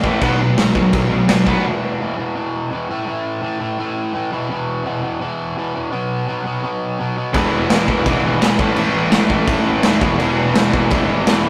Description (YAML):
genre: punk rock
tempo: 168 BPM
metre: 4/4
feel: straight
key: unclear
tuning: A4 = 440 Hz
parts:
  - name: distorted electric guitar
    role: riff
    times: 0.0-11.5 s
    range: E2 to B3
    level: -24 LUFS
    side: equal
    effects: distortion
  - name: thick fuzz guitar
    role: riff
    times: 0.0-1.6, 7.3-11.4 s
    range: E2 to B3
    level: -25 LUFS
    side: equal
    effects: distortion
  - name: tight distorted guitar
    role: riff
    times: 0.0-1.6, 7.3-11.5 s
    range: E2 to B3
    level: -23 LUFS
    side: equal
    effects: distortion
  - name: fuzz picked electric bass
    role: bass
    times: 0.0-1.5, 7.3-11.5 s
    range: E1 to D#2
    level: -26 LUFS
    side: equal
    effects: overdrive
  - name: raw garage drum kit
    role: drums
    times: 0.0-1.6, 7.3-11.4 s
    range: crash cymbal, kick drum, snare drum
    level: -20 LUFS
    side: equal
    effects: none
room: light reverb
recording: rough rehearsal-room recording, tube saturation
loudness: -18 LUFS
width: mono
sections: 0.0-1.6 A section; 1.6-11.5 B section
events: none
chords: 0.2 B5; 1.6 E5; 2.9 A5; 4.3 E5; 5.9 B5; 7.3 E; 8.6 A5; 10.0 E5